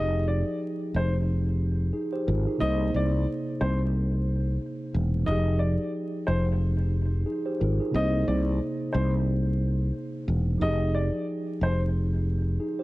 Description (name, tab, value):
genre	hip hop, boom-bap hip-hop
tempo	90 BPM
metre	4/4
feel	swing 56% on 16ths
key	F dorian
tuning	A4 = 442 Hz
part	warm upright piano	melody	0.0-11.8 s	C5 to Eb5	-32 LUFS	left 1 dB	high-pass filter, low-pass filter, plate reverb, tape echo
part	mellow tine electric piano	accompaniment	0.0-12.8 s	C3 to C5	-30 LUFS	equal	slow stereo tremolo, cassette tape, high-pass filter, low-pass filter
part	fretless electric bass	bass	0.0-12.6 s	E1 to C2	-25 LUFS	equal	wide subtle chorus
room	light reverb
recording	dark, warm production, vinyl crackle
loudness	-24 LUFS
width	side -18 dB against mid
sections	0.0-12.8 A section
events	none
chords	0.0 Fm9; 2.6 Cm7; 5.3 Fm9; 7.9 Cm7; 10.6 Fm9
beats	0.61 1.27 1.94 | 2.61 3.27 3.94 4.61 | 5.27 5.94 6.61 7.27 | 7.94 8.61 9.27 9.94 | 10.61 11.27 11.94 12.61